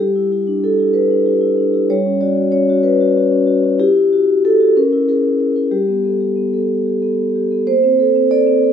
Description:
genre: classical, contemporary piece for solo vibraphone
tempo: 63 BPM (dotted quarters)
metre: 6/8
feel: rubato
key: G lydian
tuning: A4 = 440 Hz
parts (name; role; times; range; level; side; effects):
- vibraphone with soft mallets; solo; 0.0-8.7 s; G3 to D5; -13 LUFS; equal; none
room: light reverb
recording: close, detailed microphones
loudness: -13 LUFS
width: side -8 dB against mid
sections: 0.0-7.7 A section; 7.7-8.7 B section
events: none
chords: 0.0 G6; 1.9 Gmaj7#11; 3.8 Emadd9; 4.8 C#m6; 5.7 Gadd9; 7.7 Bbmaj9

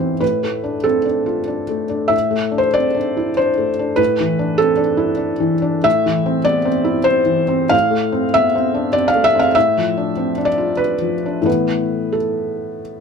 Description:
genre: neoclassical minimalist piano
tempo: 96 BPM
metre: 3/4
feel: uneven beats, rubato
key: unclear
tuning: A4 = 440 Hz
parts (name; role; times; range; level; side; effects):
- felt-muted upright piano; solo; 0.0-13.0 s; A2 to F5; -15 LUFS; equal; none
room: little or no reverb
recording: close, detailed microphones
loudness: -15 LUFS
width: side -6 dB against mid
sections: 0.0-13.0 A section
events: none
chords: 0.2 F6/A; 2.1 Dsus2/A; 7.7 F6/A; 11.5 Asus2

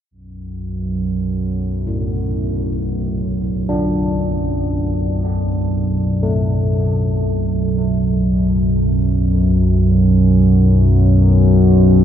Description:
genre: dark ambient drone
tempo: free time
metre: none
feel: none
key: B minor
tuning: A4 = 440 Hz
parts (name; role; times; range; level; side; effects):
- analog drone; drone; 0.3-12.0 s; B1 to F#2; -14 LUFS; equal; chorus
- carillon bells; arpeggios; 1.9-12.0 s; A2 to D4; -25 LUFS; left 1 dB; diffuse ambient delay
room: light reverb, studio reverb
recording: none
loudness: -14 LUFS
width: side -10 dB against mid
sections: 0.1-12.0 A section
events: fade-in on synth drone 0.1-12.0; fade-in on church bells 0.1-12.0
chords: 0.1 Bm

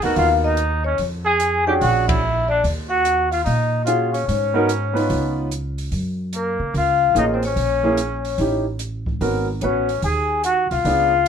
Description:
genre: jazz, small-group swing and bop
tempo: 146 BPM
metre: 4/4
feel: swing 66% on 8ths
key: unclear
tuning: A4 = 439 Hz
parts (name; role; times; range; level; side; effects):
- vibraphone with soft mallets; melody; 0.0-11.3 s; Bb4 to Ab5; -21 LUFS; left 4 dB; none
- breathy trumpet; second line; 0.0-11.3 s; Bb3 to Ab4; -23 LUFS; right 2 dB; none
- warm concert grand piano; accompaniment; 0.0-11.1 s; Bb3 to Cb5; -22 LUFS; right 3 dB; none
- upright bass; bass; 0.0-11.3 s; Ab1 to Db3; -24 LUFS; right 1 dB; none
- open jazz drum kit; drums; 0.0-11.3 s; hi-hat, kick drum, ride cymbal; -30 LUFS; right 1 dB; none
room: moderate studio reverb, RT60 0.6 s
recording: minimal, uncompressed stereo recording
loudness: -18 LUFS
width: side -7 dB against mid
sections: 0.0-5.9 A section; 5.9-11.3 B section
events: band accent 2.0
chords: 0.0 Abm9 (rootless); 1.0 Fm; 1.8 Bb7alt; 2.6 Ebm11; 4.3 Abm7; 5.1 Db9; 5.9 Gbmaj7; 7.6 Bbm7b5; 8.4 A7#11; 9.2 Abm11

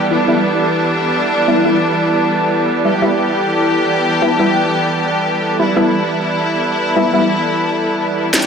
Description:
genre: dark technical drum and bass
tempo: free time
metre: none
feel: none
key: E minor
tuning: A4 = 440 Hz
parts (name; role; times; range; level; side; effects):
- bright symphonic string section; sustained chords; 0.0-8.5 s; E3 to G4; -16 LUFS; equal; none
- ethereal airy pad; texture; 0.0-8.5 s; E4 to A5; -18 LUFS; equal; ensemble chorus, built-in reverb
- orchestra-hit-like synth stab; stabs; 0.1-8.4 s; G3 to E4; -17 LUFS; left 1 dB; built-in reverb, digital delay
- drum and bass drum kit; drums; 8.3-8.5 s; hi-hat, snare drum; -11 LUFS; equal; small room ambience
- ride cymbal; drums; 8.3-8.4 s; none; -23 LUFS; equal; none
- riser; sound effects; 8.3-8.5 s; none; barely audible; none; none
room: moderate plate reverb, RT60 1.2 s, small room ambience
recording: none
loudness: -13 LUFS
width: side -6 dB against mid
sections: 0.0-8.3 A section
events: none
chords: 0.0 Em

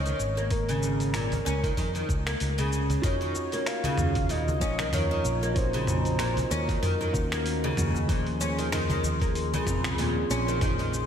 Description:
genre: organic downtempo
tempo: 95 BPM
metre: 4/4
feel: swing 56% on 16ths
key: Eb dorian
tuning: A4 = 440 Hz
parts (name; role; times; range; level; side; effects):
- breathy flute-like synth lead; melody; 0.0-7.5 s; Bb4 to F5; -34 LUFS; equal; wide subtle chorus, tape echo, shimmer reverb, slapback echo
- mellow fretless electric bass; bass; 0.0-11.1 s; Ab1 to Gb2; -30 LUFS; equal; wide subtle chorus
- oud; arpeggios; 0.1-10.9 s; Bb2 to Db4; -30 LUFS; left 1 dB; tape echo, shimmer reverb, slapback echo
- dusty soul sampler-style drum kit; drums; 0.1-11.1 s; finger snaps, hi-hat, shaker, toms; -33 LUFS; equal; overdrive
- cajon; percussion; 0.4-11.1 s; none; -36 LUFS; right 1 dB; none
- electronic kick drum; drums; 0.5-10.8 s; none; -29 LUFS; equal; overdrive
- clean electric guitar; accompaniment; 3.0-11.1 s; F3 to C5; -34 LUFS; right 2 dB; sidechain pumping, tape echo, shimmer reverb, slapback echo
- warbly tape-like pad; sustained chords; 3.0-11.1 s; Ab4 to C6; -37 LUFS; left 1 dB; chorus, built-in reverb, sidechain pumping, shimmer reverb
room: moderate concert hall reverb, RT60 2.3 s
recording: big arena sound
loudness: -24 LUFS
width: side -8 dB against mid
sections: 0.0-3.0 A section; 3.0-11.1 B section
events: none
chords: 0.0 Db5; 3.0 Ebm9; 8.1 Dbmaj7

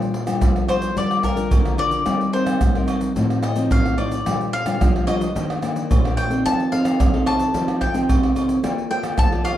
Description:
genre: samba and choro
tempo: 110 BPM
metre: 4/4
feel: straight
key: Bb major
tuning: A4 = 440 Hz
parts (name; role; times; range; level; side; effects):
- nylon-string guitar; accompaniment; 0.0-9.6 s; A2 to D5; -22 LUFS; left 1 dB; none
- egg shaker, pandeiro, agogo bells, tamborim and surdo; percussion; 0.0-9.6 s; none; -21 LUFS; right 1 dB; none
- bowl-back mandolin; melody; 0.7-9.6 s; Bb4 to A5; -24 LUFS; left 2 dB; none
room: moderate large studio reverb, RT60 1.1 s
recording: dark, warm production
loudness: -17 LUFS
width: side -12 dB against mid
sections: 0.0-9.6 A section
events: mandolin solo 0.0-9.6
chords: 0.0 Bb6; 1.0 Gm7; 2.1 Cm7/G; 3.2 F7/A; 4.3 Bb6; 5.4 Ebmaj7; 6.4 F7; 8.6 Bbmaj7

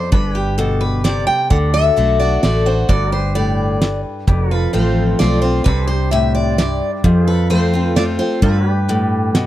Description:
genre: honky-tonk and classic country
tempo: 130 BPM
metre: 3/4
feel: straight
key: unclear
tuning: A4 = 440 Hz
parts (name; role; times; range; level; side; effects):
- picked steel-string acoustic guitar; melody; 0.0-9.5 s; G4 to G5; -21 LUFS; left 1 dB; none
- picked steel-string acoustic guitar; accompaniment; 0.0-9.5 s; F2 to F#4; -19 LUFS; left 2 dB; none
- pedal steel guitar; sustained chords; 0.0-9.5 s; D4 to F5; -25 LUFS; right 3 dB; none
- vintage muted fingered electric bass; bass; 0.1-9.5 s; F1 to G2; -18 LUFS; right 1 dB; none
- damped 70s drum kit; drums; 0.1-9.5 s; hi-hat, kick drum, snare drum; -15 LUFS; right 1 dB; none
room: small room reverb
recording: dry, close 1970s-style studio recording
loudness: -14 LUFS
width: side -13 dB against mid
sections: 0.0-9.5 A section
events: none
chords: 0.1 G; 1.5 D; 2.9 G; 4.3 F; 5.7 Csus2; 7.0 F; 8.4 G

